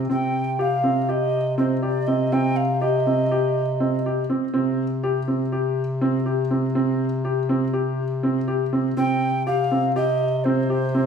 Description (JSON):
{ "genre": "contemporary instrumental, chamber music in an uneven meter", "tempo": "244 BPM (eighths)", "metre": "9/8", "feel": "straight", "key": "C minor", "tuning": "A4 = 442 Hz", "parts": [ { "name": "warm bass clarinet", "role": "bass", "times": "0.0-11.1 s", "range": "C3", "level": "-25 LUFS", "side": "left 2 dB", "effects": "none" }, { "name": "breathy alto ocarina", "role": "melody", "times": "0.1-4.2, 9.0-11.1 s", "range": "C5 to G5", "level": "-24 LUFS", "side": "right 2 dB", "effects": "none" }, { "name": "felt-muted upright piano", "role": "arpeggios", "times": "0.1-11.1 s", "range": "C4 to G4", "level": "-23 LUFS", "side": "right 1 dB", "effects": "none" } ], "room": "wet recital hall reverb, RT60 1.4 s", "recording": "minimal, uncompressed stereo recording", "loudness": "-20 LUFS", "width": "side -6 dB against mid", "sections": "0.0-11.1 A section", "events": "none", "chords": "0.0 Cm", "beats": "| 0.10 0.35 0.59 0.84 1.09 1.33 1.58 1.83 2.07 | 2.32 2.57 2.81 3.06 3.31 3.55 3.80 4.04 4.29 | 4.54 4.78 5.03 5.28 5.52 5.77 6.02 6.26 6.51 | 6.75 7.00 7.25 7.49 7.74 7.99 8.23 8.48 8.73 | 8.97 9.22 9.47 9.71 9.96 10.21 10.45 10.70 10.95" }